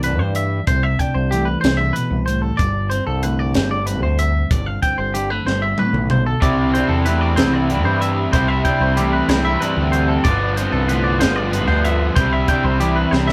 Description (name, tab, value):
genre	math rock and midwest emo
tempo	63 BPM (dotted quarters)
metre	6/8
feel	straight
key	C major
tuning	A4 = 440 Hz
part	semi-hollow electric guitar	accompaniment	0.0-13.3 s	G2 to E4	-26 LUFS	equal	none
part	twangy electric guitar	arpeggios	0.0-13.3 s	G4 to G5	-25 LUFS	equal	none
part	growling fingered electric bass	bass	0.0-13.3 s	G1 to G2	-23 LUFS	equal	overdrive
part	crisp fusion drum kit	drums	0.0-13.3 s	hi-hat, kick drum, snare drum, toms	-24 LUFS	equal	none
part	raw garage guitar	riff	6.4-13.3 s	G2 to F4	-23 LUFS	equal	overdrive
room	light reverb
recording	band playing live in one room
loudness	-18 LUFS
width	mono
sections	0.0-13.3 A section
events	drum fill 5.5-6.4, 13.1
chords	0.0 C69; 2.6 Gsus4; 6.4 C69; 10.3 G9sus4; 12.2 Cmaj9